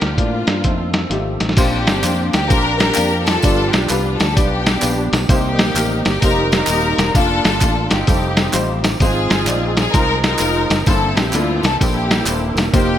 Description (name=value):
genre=uptempo gospel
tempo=129 BPM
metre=4/4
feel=swing 65% on 8ths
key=Bb major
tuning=A4 = 439 Hz
part: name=warm studio string section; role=melody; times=0.0-13.0 s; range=Bb3 to Bb4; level=-19 LUFS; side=left 1 dB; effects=digital delay
part: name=warm baby grand piano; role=accompaniment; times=0.0-13.0 s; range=G2 to F5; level=-23 LUFS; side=left 3 dB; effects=analog chorus
part: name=tonewheel organ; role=sustained chords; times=0.0-13.0 s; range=Eb3 to Bb4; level=-28 LUFS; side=right 2 dB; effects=fast rotary speaker, overdrive
part: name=fingered electric bass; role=bass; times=0.0-13.0 s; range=Eb1 to A2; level=-22 LUFS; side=equal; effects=none
part: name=lo-fi sampler-style drum kit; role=drums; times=0.0-12.9 s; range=crash cymbal, hi-hat, kick drum, snare drum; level=-18 LUFS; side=equal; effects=gated reverb
part: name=tambourine and handclaps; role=percussion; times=1.6-12.9 s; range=none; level=-28 LUFS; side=right 3 dB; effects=none
room=light reverb, small room reverb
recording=bright 1980s-style digital production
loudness=-14 LUFS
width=side -10 dB against mid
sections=0.0-1.6 A section; 1.6-13.0 B section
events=drum fill 1.1-1.6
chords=0.0 Bb; 0.6 F7; 1.6 Bb69; 3.4 G7; 5.3 Cm7; 6.2 F9sus4; 7.1 Bb/F; 8.1 F9; 9.0 Ab6; 10.9 C13/G